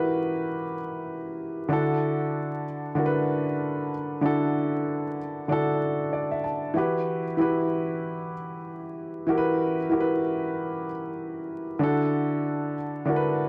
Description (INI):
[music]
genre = hip hop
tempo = 95 BPM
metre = 4/4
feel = swing 55% on 16ths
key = E minor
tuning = A4 = 439 Hz
[part]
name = dark baby grand piano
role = solo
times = 0.0-13.5 s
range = D3 to A5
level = -27 LUFS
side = equal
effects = digital delay
[sound]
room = light reverb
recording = vinyl crackle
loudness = -27 LUFS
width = mono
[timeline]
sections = 0.0-6.8 A section; 6.8-13.5 B section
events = none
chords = 0.0 Emadd9; 1.7 Dadd9; 6.8 Emadd9; 11.8 Dadd9